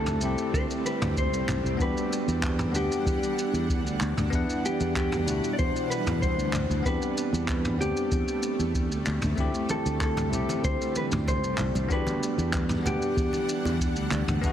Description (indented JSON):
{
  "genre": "sunset chillout",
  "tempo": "95 BPM",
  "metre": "4/4",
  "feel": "straight",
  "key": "E minor",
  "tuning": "A4 = 440 Hz",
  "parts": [
    { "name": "mellow electric guitar", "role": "melody", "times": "0.0-13.8 s", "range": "G4 to D5", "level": "-31 LUFS", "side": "equal", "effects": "digital delay" },
    { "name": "bell-like tine electric piano", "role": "accompaniment", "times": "0.0-14.5 s", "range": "B2 to F#5", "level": "-32 LUFS", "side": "moving between left 5 dB and right 5 dB", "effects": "auto-pan" },
    { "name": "shimmering ambient pad", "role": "sustained chords", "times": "0.0-14.5 s", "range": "B2 to F#5", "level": "-34 LUFS", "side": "equal", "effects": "chorus, built-in reverb" },
    { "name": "fretless electric bass", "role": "bass", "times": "0.0-14.5 s", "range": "C2 to E2", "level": "-28 LUFS", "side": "equal", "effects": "none" },
    { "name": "vintage brush drum kit", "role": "drums", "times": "0.1-14.5 s", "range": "handclaps, shaker, toms", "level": "-34 LUFS", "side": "equal", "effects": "none" },
    { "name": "electronic kick drum", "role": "drums", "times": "0.5-14.5 s", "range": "none", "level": "-30 LUFS", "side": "equal", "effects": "none" },
    { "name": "congas", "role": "percussion", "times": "9.4-14.5 s", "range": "none", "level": "-38 LUFS", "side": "right 1 dB", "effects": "none" }
  ],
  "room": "light reverb, small room reverb",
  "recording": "heavily compressed radio sound, multiband compression",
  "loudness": "-24 LUFS",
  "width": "side -10 dB against mid",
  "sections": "0.0-14.5 A section",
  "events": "none",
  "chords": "0.0 D7sus4; 1.8 Em9; 6.9 Am11; 9.4 D7sus4; 11.9 Gmaj13"
}